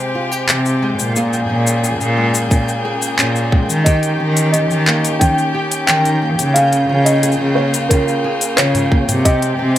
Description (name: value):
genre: folktronica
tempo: 89 BPM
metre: 4/4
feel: straight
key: Bb dorian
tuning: A4 = 440 Hz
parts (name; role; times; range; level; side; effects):
- rich string quartet; sustained chords; 0.0-9.8 s; C3 to Ab4; -23 LUFS; left 2 dB; plate reverb
- nylon-string guitar; arpeggios; 0.0-9.8 s; Bb2 to Ab4; -23 LUFS; equal; digital delay, plate reverb
- flickering grainy texture; texture; 0.0-9.8 s; G5; -27 LUFS; right 1 dB; built-in reverb, plate reverb
- organic electronic drum kit; drums; 0.3-9.8 s; cabasa, handclaps, hi-hat, toms; -18 LUFS; left 1 dB; none
- warm cello; bass; 0.5-9.8 s; Bb2 to Eb3; -17 LUFS; equal; none
- electronic kick drum; drums; 2.5-9.4 s; none; -14 LUFS; equal; none
- felt-muted upright piano; melody; 3.8-9.8 s; Bb4 to G5; -19 LUFS; equal; digital delay, plate reverb
room: moderate studio reverb, RT60 0.6 s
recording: none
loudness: -13 LUFS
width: side -12 dB against mid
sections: 0.0-9.8 A section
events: none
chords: 0.0 Abmaj7/C; 1.2 Bbm7; 3.9 Eb7; 6.6 Db6; 9.3 Abmaj7/C